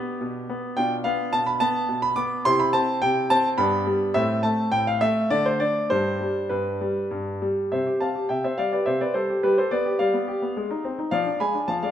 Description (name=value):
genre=classical-period piano sonatina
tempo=106 BPM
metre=3/4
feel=rubato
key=C major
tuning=A4 = 440 Hz
part: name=bright concert grand piano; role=solo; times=0.0-11.9 s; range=G2 to D6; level=-21 LUFS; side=equal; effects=none
room=wet recital hall reverb, RT60 1.5 s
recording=minimal, uncompressed stereo recording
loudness=-21 LUFS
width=side -10 dB against mid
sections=0.0-7.7 A section; 7.7-11.9 B section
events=none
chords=0.0 G/B; 0.8 Bm7b5; 2.5 C; 3.6 G; 4.2 Am; 5.3 D5; 5.9 G; 7.7 C; 9.4 G7; 10.6 Ab; 11.1 Ddim/F